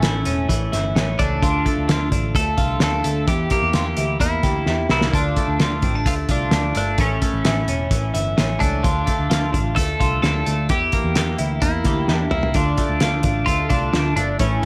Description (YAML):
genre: jangly indie pop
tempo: 129 BPM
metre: 4/4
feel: straight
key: D minor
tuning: A4 = 437 Hz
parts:
  - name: twelve-string electric guitar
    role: melody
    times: 0.0-14.7 s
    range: C#4 to A4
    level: -26 LUFS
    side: equal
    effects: phaser, digital delay
  - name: twelve-string electric guitar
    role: arpeggios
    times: 0.0-14.7 s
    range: A2 to G4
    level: -27 LUFS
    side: equal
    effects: tube saturation
  - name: vintage muted picked electric bass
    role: bass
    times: 0.0-14.6 s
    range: E1 to E2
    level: -26 LUFS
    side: equal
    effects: none
  - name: cloth-damped thuddy drum kit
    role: drums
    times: 0.0-14.7 s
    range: hi-hat, kick drum, snare drum, toms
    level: -24 LUFS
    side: equal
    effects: none
  - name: fingerpicked plugged-in steel-string acoustic guitar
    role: accompaniment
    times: 12.5-14.7 s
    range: A2 to F4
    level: -29 LUFS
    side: equal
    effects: none
room: little or no reverb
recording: none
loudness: -20 LUFS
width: mono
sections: 0.0-14.7 A section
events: drum fill 4.7-5.1, 12.1-12.6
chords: 0.0 A; 1.4 Dm; 3.3 Edim; 5.1 Dm; 7.0 A; 8.8 Dm; 10.7 Edim; 12.6 Dm